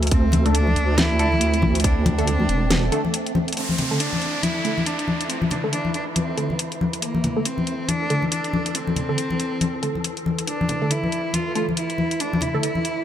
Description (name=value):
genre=deep dubstep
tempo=139 BPM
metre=4/4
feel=swing 59% on 16ths, half-time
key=unclear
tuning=A4 = 440 Hz
part: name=deep soft wobble bass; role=bass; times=0.0-2.9 s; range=E1 to D2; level=-20 LUFS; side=right 1 dB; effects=chorus
part: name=garage drum kit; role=drums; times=0.0-12.9 s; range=hi-hat, snare drum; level=-26 LUFS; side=left 1 dB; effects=small room ambience
part: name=wind-like tuned noise texture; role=texture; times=0.0-13.0 s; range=E3 to A4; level=-30 LUFS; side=right 1 dB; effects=built-in reverb
part: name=warm cello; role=melody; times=0.1-13.0 s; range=Bb3 to F4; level=-26 LUFS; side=equal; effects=vintage 12-bit sampler grit, dub echo
part: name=electronic kick drum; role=drums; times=0.1-1.9 s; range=none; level=-20 LUFS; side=equal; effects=small room ambience
part: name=congas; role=percussion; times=0.3-12.8 s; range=none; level=-25 LUFS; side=left 2 dB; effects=none
part: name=filtered dub chord stab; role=stabs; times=0.5-12.7 s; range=D3 to A4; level=-29 LUFS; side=right 1 dB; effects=phaser, dub echo
part: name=downlifter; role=sound effects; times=3.6-7.0 s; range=none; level=-30 LUFS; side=right 1 dB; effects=none
room=light reverb, digital ambience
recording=none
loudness=-20 LUFS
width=side -10 dB against mid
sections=0.0-3.6 A section; 3.6-13.0 B section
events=drop 0.0-3.6; break 3.1-3.6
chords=0.0 D5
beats=| 0.12 0.55 0.98 1.41 | 1.84 2.27 2.71 3.14 | 3.57 4.00 4.43 4.86 | 5.30 5.73 6.16 6.59 | 7.02 7.45 7.89 8.32 | 8.75 9.18 9.61 10.04 | 10.48 10.91 11.34 11.77 | 12.20 12.63